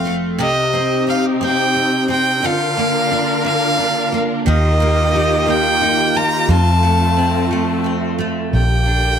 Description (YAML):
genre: six-eight pop ballad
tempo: 59 BPM (dotted quarters)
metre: 6/8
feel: straight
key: Bb major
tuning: A4 = 440 Hz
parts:
  - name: warm violin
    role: melody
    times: 0.0-9.2 s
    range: Eb5 to Bb5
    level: -18 LUFS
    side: equal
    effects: analog delay
  - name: picked steel-string acoustic guitar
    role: accompaniment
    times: 0.0-9.2 s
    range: F2 to A4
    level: -19 LUFS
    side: equal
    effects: double-tracked left and right
  - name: vintage muted fingered electric bass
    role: bass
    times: 0.0-9.2 s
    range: F1 to F2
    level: -17 LUFS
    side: equal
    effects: none
  - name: warm studio string section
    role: sustained chords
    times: 0.4-9.2 s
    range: C3 to Bb4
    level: -23 LUFS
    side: left 2 dB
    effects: none
room: light reverb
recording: none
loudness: -14 LUFS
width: side -8 dB against mid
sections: 0.0-8.5 A section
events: none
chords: 0.4 Cm; 2.4 Bb/D; 4.5 Ebadd9; 6.5 F; 8.5 Bb6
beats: | 0.40 1.42 | 2.44 3.45 | 4.47 5.47 | 6.48 7.50 | 8.53